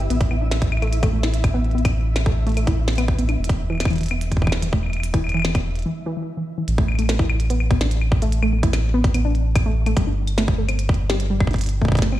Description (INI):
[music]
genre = IDM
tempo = 146 BPM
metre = 4/4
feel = straight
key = unclear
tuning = A4 = 439 Hz
[part]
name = warbly dusty pluck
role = arpeggios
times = 0.0-12.2 s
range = E3 to G4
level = -26 LUFS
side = left 1 dB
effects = chorus, ping-pong delay
[part]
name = round analog bass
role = bass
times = 0.0-12.2 s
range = E1 to A1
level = -21 LUFS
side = equal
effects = none
[part]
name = glitchy drum kit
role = drums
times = 0.0-12.2 s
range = claves, hi-hat, snare drum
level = -28 LUFS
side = left 1 dB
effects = studio reverb, ping-pong delay
[part]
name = flickering grainy texture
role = texture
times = 0.0-5.9 s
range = E4 to E5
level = -35 LUFS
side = right 1 dB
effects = built-in reverb, sidechain pumping
[part]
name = electronic kick drum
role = drums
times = 0.2-12.0 s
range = none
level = -19 LUFS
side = equal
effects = studio reverb
[sound]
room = little or no reverb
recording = played on a big sound system in a bare room, stone room reverb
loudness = -18 LUFS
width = side -14 dB against mid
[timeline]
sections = 0.0-6.7 A section; 6.7-12.2 B section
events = break 5.9-6.7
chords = 0.1 A5; 3.4 E5; 6.7 N.C.